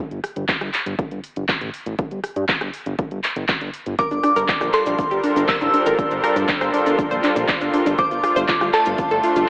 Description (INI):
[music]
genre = progressive house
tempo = 120 BPM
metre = 4/4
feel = straight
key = G dorian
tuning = A4 = 440 Hz
[part]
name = fat analog bass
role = bass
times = 0.1-9.4 s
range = G1 to G2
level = -26 LUFS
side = equal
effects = sidechain pumping
[part]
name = house drum kit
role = drums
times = 0.1-9.5 s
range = handclaps, hi-hat, rim click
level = -24 LUFS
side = equal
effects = studio reverb
[part]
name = electronic kick drum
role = drums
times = 0.5-9.1 s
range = none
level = -26 LUFS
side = equal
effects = studio reverb
[part]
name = glassy synth bell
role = melody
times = 4.0-9.4 s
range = A5 to E6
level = -21 LUFS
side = equal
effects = chorus, dub echo
[part]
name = supersaw pad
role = sustained chords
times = 4.3-9.5 s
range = G3 to Bb4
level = -22 LUFS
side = equal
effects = sidechain pumping
[part]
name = analog pluck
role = arpeggios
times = 4.0-9.4 s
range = D4 to D5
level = -21 LUFS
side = equal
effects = chorus, sidechain pumping, tape echo
[part]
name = cabasa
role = percussion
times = 4.0-9.5 s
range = none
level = -41 LUFS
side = equal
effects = none
[part]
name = twinkling granular texture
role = texture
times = 4.4-9.5 s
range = C5 to C6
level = -30 LUFS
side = equal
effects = built-in reverb, sidechain pumping
[sound]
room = moderate lush hall reverb, RT60 2.1 s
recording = AM radio sound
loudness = -18 LUFS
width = side -27 dB against mid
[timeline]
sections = 0.0-9.5 A section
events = none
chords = 0.0 N.C.; 4.0 Gm7; 8.0 F6/G